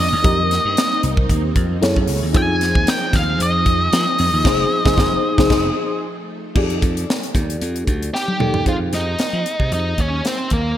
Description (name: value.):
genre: polished 1980s jazz-funk pop.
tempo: 114 BPM.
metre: 4/4.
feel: swing 54% on 16ths.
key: F dorian.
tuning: A4 = 439 Hz.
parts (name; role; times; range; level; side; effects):
octave-fuzz lead guitar; melody; 0.0-10.8 s; Bb3 to Ab5; -20 LUFS; equal; distortion.
bell-like FM electric piano; accompaniment; 0.0-10.8 s; Eb4 to Eb5; -23 LUFS; left 2 dB; ensemble chorus.
string machine, violins; sustained chords; 0.0-6.6 s; F3 to Ab4; -28 LUFS; right 1 dB; ensemble chorus.
slap bass; bass; 0.0-10.7 s; F1 to F3; -21 LUFS; equal; none.
crisp fusion drum kit; drums; 0.2-10.6 s; crash cymbal, hi-hat, kick drum, snare drum, toms; -20 LUFS; equal; gated reverb.
room: light reverb.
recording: bright 1980s-style digital production.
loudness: -16 LUFS.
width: side -12 dB against mid.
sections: 0.0-6.6 A section; 6.6-8.7 B section; 8.7-10.8 C section.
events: band accent 4.5-6.6; drum fill 8.1-8.7.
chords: 0.2 Cm7/F; 1.8 Gbm7; 2.3 Fm7; 6.0 F7; 6.6 F13; 8.7 Fm9.